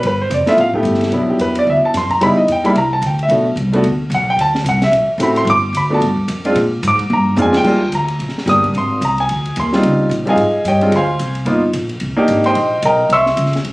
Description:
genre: jazz, small-group swing and bop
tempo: 220 BPM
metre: 4/4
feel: swing 60% on 8ths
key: G major, Eb major from 7.6 s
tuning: A4 = 440 Hz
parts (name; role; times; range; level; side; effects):
- warm baby grand piano; accompaniment; 0.0-13.5 s; F#3 to E6; -14 LUFS; equal; none
- upright bass; bass; 0.0-13.7 s; F1 to Bb2; -20 LUFS; equal; none
- compact cocktail drum kit; drums; 0.0-13.7 s; crash cymbal, hi-hat, kick drum, ride cymbal, snare drum, toms; -26 LUFS; equal; none
room: light reverb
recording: recorded on a phone in the room, club reverb, compression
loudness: -13 LUFS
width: side -20 dB against mid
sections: 0.0-7.6 A section; 7.6-13.7 A section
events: drum fill 7.1-7.6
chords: 0.0 G13; 1.1 Cmaj9#11; 2.2 C#m7b5; 2.8 Csus2; 3.3 Bm7; 4.4 D9; 5.5 Gmaj9; 6.6 Bb7; 7.6 Ebmaj7; 8.7 Ab; 9.8 Dbmaj9#11; 10.9 Dm7b5; 11.5 G7alt; 12.0 Cm9; 13.1 C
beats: | 0.03 0.30 0.58 0.85 | 1.12 1.39 1.67 1.94 | 2.21 2.48 2.75 3.03 | 3.30 3.57 3.84 4.11 | 4.39 4.66 4.93 5.20 | 5.47 5.75 6.02 6.29 | 6.56 6.83 7.11 7.38 | 7.65 7.92 8.19 8.47 | 8.74 9.01 9.28 9.56 | 9.83 10.10 10.37 10.65 | 10.92 11.19 11.46 11.73 | 12.01 12.28 12.55 12.82 | 13.10 13.37 13.64

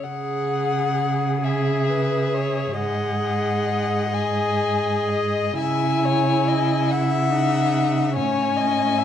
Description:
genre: classical, slow romantic movement for string quartet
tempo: 39-50 BPM (dotted quarters)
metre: 6/8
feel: rubato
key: C# minor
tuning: A4 = 439 Hz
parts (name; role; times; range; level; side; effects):
- warm violin; melody; 0.0-9.0 s; D#5 to G#5; -25 LUFS; left 8 dB; none
- warm viola; accompaniment; 0.0-9.0 s; C#4 to G#4; -24 LUFS; right 2 dB; none
- rich cello; bass; 0.0-9.0 s; G#2 to C#3; -24 LUFS; right 3 dB; none
- rich violin; second line; 1.4-9.0 s; G#4 to E5; -28 LUFS; left 4 dB; none
room: wet recital hall reverb, RT60 1.6 s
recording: dark, warm production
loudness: -19 LUFS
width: side -9 dB against mid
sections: 0.0-9.0 A section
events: none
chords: 0.0 C#m; 2.8 G#5; 5.6 C#m; 8.2 A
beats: | 0.03 1.44 | 2.78 4.13 | 5.59 6.91 | 8.17

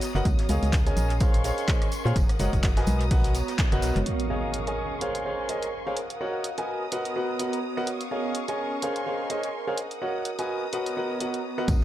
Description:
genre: piano house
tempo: 126 BPM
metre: 4/4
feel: swing 57% on 16ths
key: unclear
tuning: A4 = 443 Hz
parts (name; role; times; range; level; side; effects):
- dark studio string section; sustained chords; 0.0-11.8 s; Bb4 to Eb6; -36 LUFS; left 2 dB; sidechain pumping, low-pass filter
- punchy analog drum machine; drums; 0.0-11.8 s; handclaps, hi-hat, rim click, shaker; -35 LUFS; right 1 dB; dub echo
- vintage brush drum kit; drums; 0.0-4.0, 11.7-11.8 s; hi-hat, snare drum, tambourine; -43 LUFS; equal; none
- tambourine and congas; percussion; 0.0-4.0, 11.7-11.8 s; none; -37 LUFS; left 2 dB; none
- warbly tape-like pad; texture; 0.0-11.8 s; Gb4 to Db5; -34 LUFS; right 2 dB; chorus, built-in reverb, phaser, sidechain pumping
- organ-like FM bass; bass; 0.1-4.0, 11.7-11.8 s; Gb1 to Bb2; -26 LUFS; equal; sidechain pumping
- warm concert grand piano; riff; 0.2-11.7 s; Gb4 to Ab5; -30 LUFS; equal; sidechain pumping, dub echo
- electronic kick drum; drums; 0.3-3.7, 11.7-11.8 s; none; -24 LUFS; equal; none
- impact; sound effects; 4.1-6.0, 11.7-11.8 s; none; -33 LUFS; equal; none
room: light reverb, studio ambience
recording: echo-heavy mix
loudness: -24 LUFS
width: side -13 dB against mid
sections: 0.0-4.1 A section; 4.1-11.7 B section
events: band accent 3.6; impact 4.1-6.0, 11.7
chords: 0.3 Db69; 1.2 Bbm9; 2.2 Gb6; 2.9 Cbmaj7; 4.1 Db69; 5.0 Bbm9; 6.0 Gb6; 6.7 Cbmaj7; 7.9 Db69; 8.8 Bbm9; 9.8 Gb6; 10.5 Cbmaj7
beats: | 0.25 0.73 1.21 1.68 | 2.16 2.63 3.11 3.59 | 4.06 4.54 5.01 5.49 | 5.97 6.44 6.92 7.40 | 7.87 8.35 8.82 9.30 | 9.78 10.25 10.73 11.21 | 11.68

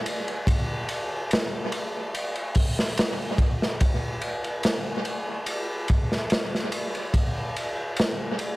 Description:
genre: trip hop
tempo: 72 BPM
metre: 4/4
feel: straight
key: none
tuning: none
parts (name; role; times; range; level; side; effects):
- crunchy breakbeat drum kit; drums; 0.1-8.6 s; hi-hat, kick drum, ride cymbal, snare drum; -24 LUFS; equal; dub echo
room: light reverb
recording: echo-heavy mix, vinyl crackle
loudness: -24 LUFS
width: side -20 dB against mid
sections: 0.0-8.6 A section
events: none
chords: none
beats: | 0.47 1.31 2.14 2.98 | 3.81 4.64 5.47 6.31 | 7.14 7.97

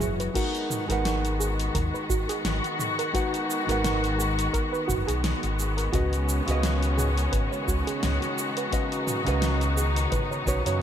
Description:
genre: sunset chillout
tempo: 86 BPM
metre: 4/4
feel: swing 56% on 16ths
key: G# minor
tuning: A4 = 440 Hz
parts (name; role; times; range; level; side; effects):
- nylon-string guitar; accompaniment; 0.0-10.8 s; C#3 to F#5; -30 LUFS; moving between left 4 dB and right 4 dB; auto-pan, tape echo
- muted studio string section; sustained chords; 0.0-10.8 s; D#3 to F#4; -30 LUFS; left 2 dB; none
- soft round pluck; arpeggios; 0.0-10.7 s; F#4 to C#5; -34 LUFS; right 5 dB; chorus, tape echo
- fingered electric bass; bass; 0.0-10.8 s; F#1 to F#2; -27 LUFS; equal; none
- deep house drum kit; drums; 0.0-10.8 s; cabasa, crash cymbal, hi-hat, snare drum, toms; -32 LUFS; right 1 dB; none
- electronic kick drum; drums; 0.0-10.6 s; none; -30 LUFS; equal; none
room: light reverb, digital ambience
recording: none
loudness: -24 LUFS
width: side -9 dB against mid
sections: 0.4-10.8 A section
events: none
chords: 0.4 G#m9; 5.9 C#9sus4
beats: | 0.35 1.05 1.75 2.44 | 3.14 3.84 4.54 5.24 | 5.93 6.63 7.33 8.03 | 8.72 9.42 10.12 10.82

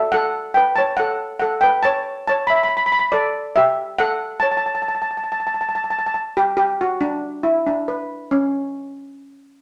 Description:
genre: calypso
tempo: 139 BPM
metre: 4/4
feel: swing 54% on 16ths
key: unclear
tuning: A4 = 439 Hz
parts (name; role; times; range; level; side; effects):
- steel pan; solo; 0.0-8.9 s; C#4 to B5; -20 LUFS; equal; none
room: wet studio reverb, RT60 0.9 s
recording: none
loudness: -20 LUFS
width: mono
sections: 0.0-6.8 A section; 6.8-9.6 B section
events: none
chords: 0.0 Asus2; 0.8 F#m; 1.6 A9/B; 2.5 Asus24; 3.4 A5; 5.1 N.C.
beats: 0.33 0.76 1.19 | 1.63 2.06 2.49 2.92 | 3.35 3.78 4.21 4.65 | 5.08 5.51 5.94 6.38 | 6.81 7.24 7.68 8.11 | 8.55

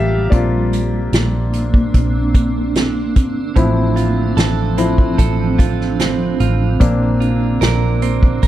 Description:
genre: pop ballad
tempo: 74 BPM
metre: 4/4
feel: straight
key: unclear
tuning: A4 = 441 Hz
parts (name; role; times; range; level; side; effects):
- clear concert grand piano; accompaniment; 0.0-8.5 s; F3 to G5; -22 LUFS; left 4 dB; none
- granular cloud pad; sustained chords; 0.0-8.5 s; F3 to G4; -21 LUFS; right 2 dB; built-in reverb
- vintage muted fingered electric bass; bass; 0.0-8.5 s; G1 to Bb1; -18 LUFS; equal; none
- unplugged drum kit; drums; 0.3-8.5 s; hi-hat, kick drum, snare drum; -15 LUFS; equal; none
- direct-recorded clean electric guitar; arpeggios; 3.6-8.5 s; A2 to Bb4; -22 LUFS; right 10 dB; none
room: small room ambience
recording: none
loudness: -13 LUFS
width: side -13 dB against mid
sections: 0.0-8.5 A section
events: grand piano solo 0.0-8.5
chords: 0.3 Bbadd9; 3.6 Dm7/A; 6.8 Bbadd9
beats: | 0.32 1.13 1.94 2.75 | 3.56 4.38 5.19 6.00 | 6.81 7.62 8.43

